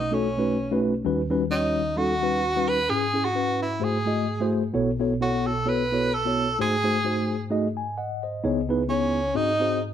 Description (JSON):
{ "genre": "gospel", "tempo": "130 BPM", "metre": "4/4", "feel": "swing 55% on 8ths", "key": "unclear", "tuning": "A4 = 440 Hz", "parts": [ { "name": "breathy tenor saxophone", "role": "melody", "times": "0.0-9.8 s", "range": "C#4 to B4", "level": "-25 LUFS", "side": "right 1 dB", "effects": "none" }, { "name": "mellow tine electric piano", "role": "accompaniment", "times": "0.0-9.9 s", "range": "B1 to G#5", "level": "-24 LUFS", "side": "left 1 dB", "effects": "slow stereo tremolo" } ], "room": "moderate large studio reverb, RT60 0.9 s", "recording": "none", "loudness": "-22 LUFS", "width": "side -9 dB against mid", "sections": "0.0-9.9 A section", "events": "none", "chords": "0.0 B9; 1.0 D#7alt; 2.9 C#m/G#; 3.8 G#7b9b13; 4.7 B9sus4; 6.6 G#7b9; 8.4 C#m9; 9.4 G#7" }